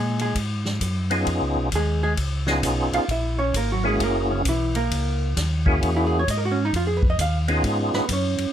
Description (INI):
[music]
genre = soul jazz organ trio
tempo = 132 BPM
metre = 4/4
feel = swing 65% on 8ths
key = Db mixolydian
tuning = A4 = 440 Hz
[part]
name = vintage hollow-body jazz guitar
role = accompaniment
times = 0.0-8.5 s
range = Db3 to F5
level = -25 LUFS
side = right 2 dB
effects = none
[part]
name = mellow tonewheel organ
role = bass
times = 0.0-8.5 s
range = Gb1 to Bb2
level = -24 LUFS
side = equal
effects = chorus vibrato, slow rotary speaker
[part]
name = vintage drum kit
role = drums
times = 0.2-8.5 s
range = hi-hat, kick drum, ride cymbal, snare drum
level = -28 LUFS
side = left 1 dB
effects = none
[part]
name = percussive tonewheel organ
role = melody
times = 1.1-8.1 s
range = Bb3 to Ab4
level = -23 LUFS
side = equal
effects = slow rotary speaker, chorus vibrato
[sound]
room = little or no reverb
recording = close, detailed microphones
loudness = -20 LUFS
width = side -10 dB against mid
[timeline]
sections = 0.0-8.5 A section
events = hollow-body jazz guitar solo 0.0-8.5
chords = 0.0 Db9; 3.1 Gb9; 6.7 Db9